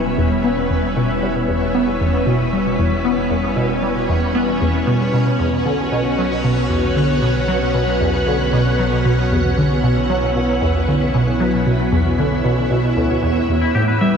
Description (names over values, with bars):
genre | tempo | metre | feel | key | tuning
ambient, sequencer-driven space music | 115 BPM | 4/4 | straight | E dorian | A4 = 440 Hz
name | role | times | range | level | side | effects
string machine, full ensemble | sustained chords | 0.0-14.2 s | G3 to F#5 | -20 LUFS | equal | ensemble chorus, shimmer reverb
resonant blip pluck | riff | 0.0-14.2 s | D2 to B3 | -18 LUFS | equal | phaser, lush chorus, analog delay, shimmer reverb
warm sub bass | bass | 0.0-14.2 s | E1 to B1 | -27 LUFS | equal | tube saturation
bubbling stepped-filter texture | texture | 0.0-14.2 s | B3 to C#5 | -24 LUFS | equal | chorus, built-in reverb, shimmer reverb
twangy electric guitar | arpeggios | 13.6-14.1 s | E4 to E5 | -21 LUFS | left 4 dB | auto-pan, analog delay, shimmer reverb
room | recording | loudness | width
wet lush hall reverb, RT60 2.7 s | worn, warbling old tape, cassette tape, warbly pitch drift | -15 LUFS | side -6 dB against mid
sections
0.0-14.2 A section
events
none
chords
0.0 Em; 5.1 Bm; 13.5 Em